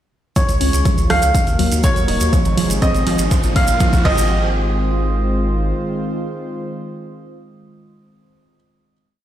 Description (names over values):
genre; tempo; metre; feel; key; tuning
progressive house; 122 BPM; 4/4; straight; Ab mixolydian; A4 = 439 Hz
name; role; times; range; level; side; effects
bright baby grand piano; melody; 0.4-8.5 s; Db5 to F5; -22 LUFS; right 1 dB; sidechain pumping, low-pass filter, digital delay
warm analog pad; sustained chords; 0.4-8.5 s; C3 to C5; -25 LUFS; equal; chorus, sidechain pumping
analog pluck; arpeggios; 0.4-4.5 s; F3 to Eb4; -23 LUFS; right 2 dB; chorus, sidechain pumping, digital delay
electronic kick drum; drums; 0.4-4.2 s; none; -17 LUFS; equal; overdrive
pop drum kit; drums; 0.4-4.2 s; crash cymbal, hi-hat, rim click; -27 LUFS; right 1 dB; none
maracas; percussion; 0.4-4.3 s; none; -28 LUFS; right 4 dB; none
riser; sound effects; 2.0-4.3 s; none; -29 LUFS; right 2 dB; none
saturated sub bass; bass; 0.5-5.7 s; Eb1 to Eb2; -20 LUFS; equal; tube saturation, sidechain pumping
room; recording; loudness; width
light reverb, digital ambience; played on a big sound system in a bare room, stone room reverb; -15 LUFS; side -12 dB against mid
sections
0.4-4.3 build; 4.3-8.2 final hit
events
build-up 0.4-4.3; filter sweep on synth pluck 0.4-4.3; riser 2.0-4.3; drum fill 2.3-4.3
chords
0.4 Dbadd9; 1.3 Ebm; 2.3 Ab6; 3.3 Bbm; 4.1 Ab6